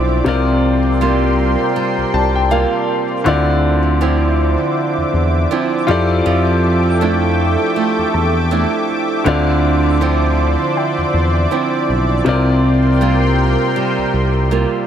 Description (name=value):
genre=contemporary R&B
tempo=80 BPM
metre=4/4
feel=swing 58% on 16ths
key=D minor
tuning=A4 = 440 Hz
part: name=clear concert grand piano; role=accompaniment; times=0.0-14.9 s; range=C3 to A5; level=-18 LUFS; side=left 4 dB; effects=none
part: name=lush unison pad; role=sustained chords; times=0.0-14.9 s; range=A4 to D6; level=-21 LUFS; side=equal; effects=chorus
part: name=nylon-string guitar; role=arpeggios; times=0.0-14.9 s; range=C3 to F4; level=-19 LUFS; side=right 7 dB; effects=ping-pong delay
part: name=smooth synth bass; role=bass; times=0.0-14.7 s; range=B1 to F2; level=-17 LUFS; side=left 1 dB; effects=none
part: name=soft round pluck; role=texture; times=3.3-12.6 s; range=G5 to C6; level=-30 LUFS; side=left 3 dB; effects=none
room=light reverb, studio reverb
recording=none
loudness=-13 LUFS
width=side -9 dB against mid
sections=0.0-14.9 A section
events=grand piano fill 1.8-3.3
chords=0.3 C7sus4; 3.3 Dm9; 5.9 Fmaj13; 9.3 Dm9; 12.3 C7sus4